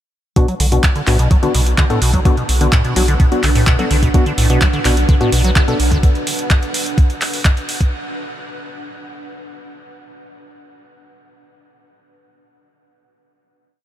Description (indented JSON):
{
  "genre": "acid house",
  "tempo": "127 BPM",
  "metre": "4/4",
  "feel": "straight",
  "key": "B minor pentatonic",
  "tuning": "A4 = 440 Hz",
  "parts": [
    { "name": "liquid acid bass", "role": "riff", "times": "0.4-6.0 s", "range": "A2 to F#3", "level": "-21 LUFS", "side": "equal", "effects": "chorus, tube saturation, sidechain pumping, tape echo" },
    { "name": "percussive organ stab", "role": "stabs", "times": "0.4-5.8 s", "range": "B3 to A4", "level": "-22 LUFS", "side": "left 2 dB", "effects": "chorus, tape echo" },
    { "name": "electro analog drum machine", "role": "drums", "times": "0.4-7.9 s", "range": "handclaps, hi-hat", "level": "-21 LUFS", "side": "right 1 dB", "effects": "none" },
    { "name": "electronic kick drum", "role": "drums", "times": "0.4-7.9 s", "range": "none", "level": "-13 LUFS", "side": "equal", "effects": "overdrive" },
    { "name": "ethereal airy pad", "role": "texture", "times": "1.6-7.9 s", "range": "D4 to F#5", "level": "-26 LUFS", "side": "right 3 dB", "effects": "ensemble chorus, built-in reverb, sidechain pumping" },
    { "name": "round analog bass", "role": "bass", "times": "0.6-6.0 s", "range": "B1", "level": "-16 LUFS", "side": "equal", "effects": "sidechain pumping" }
  ],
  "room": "light reverb",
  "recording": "none",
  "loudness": "-12 LUFS",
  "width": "side -12 dB against mid",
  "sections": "0.4-7.9 groove",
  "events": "fade-in on ambient pad 0.4-7.9; filter sweep on acid bass 0.4-6.0",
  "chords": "0.4 Bm"
}